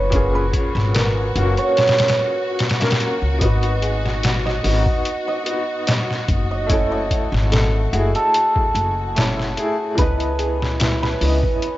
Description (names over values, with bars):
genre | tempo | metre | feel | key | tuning
trip hop | 73 BPM | 4/4 | swing 53% on 16ths | unclear | A4 = 439 Hz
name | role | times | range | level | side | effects
cimbalom | melody | 0.0-11.8 s | A4 to D#5 | -22 LUFS | right 2 dB | tape echo
bright upright piano | accompaniment | 0.0-11.8 s | A#2 to D#5 | -25 LUFS | left 1 dB | tremolo
warm studio violin section | sustained chords | 0.0-11.8 s | C#4 to F#4 | -31 LUFS | left 1 dB | none
nylon-string guitar | arpeggios | 0.0-11.8 s | A#3 to C#5 | -30 LUFS | left 2 dB | tape echo
upright bass | bass | 0.0-11.4 s | F#1 to C#2 | -21 LUFS | equal | tube saturation
trip hop sampler-style drum kit | drums | 0.1-11.8 s | hi-hat, kick drum, snare drum | -21 LUFS | equal | none
room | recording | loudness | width
light reverb, studio ambience | rough home demo mix, nothing above 7.7 kHz | -16 LUFS | side -15 dB against mid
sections
0.0-11.8 A section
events
none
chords
0.1 F#; 3.4 G#m7; 6.7 F#m7; 10.0 C#m7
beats
| 0.12 0.94 1.76 2.58 | 3.41 4.23 5.05 5.87 | 6.70 7.52 8.34 9.16 | 9.98 10.80 11.63